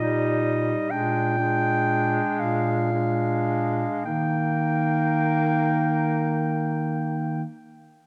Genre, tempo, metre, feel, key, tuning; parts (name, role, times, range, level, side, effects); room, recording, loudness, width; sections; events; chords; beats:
classical, lyrical piece for single-reed quartet; 34-47 BPM (dotted quarters); 12/8; rubato; Eb major; A4 = 439 Hz
warm clarinet; melody; 0.0-7.4 s; Eb5 to G5; -30 LUFS; equal
clear clarinet; second line; 0.0-7.4 s; D4 to Eb4; -31 LUFS; equal
warm tenor saxophone; accompaniment; 0.0-7.4 s; G3 to Bb3; -32 LUFS; equal
mellow bass clarinet; bass; 0.0-7.4 s; Bb2 to Eb3; -28 LUFS; equal
moderate concert hall reverb, RT60 2.2 s; -24 LUFS; mono
0.0-4.0 A section; 4.0-8.1 B section
slowing down 0.0-4.0
0.0 Eb/Bb; 0.9 Bb7; 4.0 Eb
0.90 2.38 | 4.05 5.70 7.33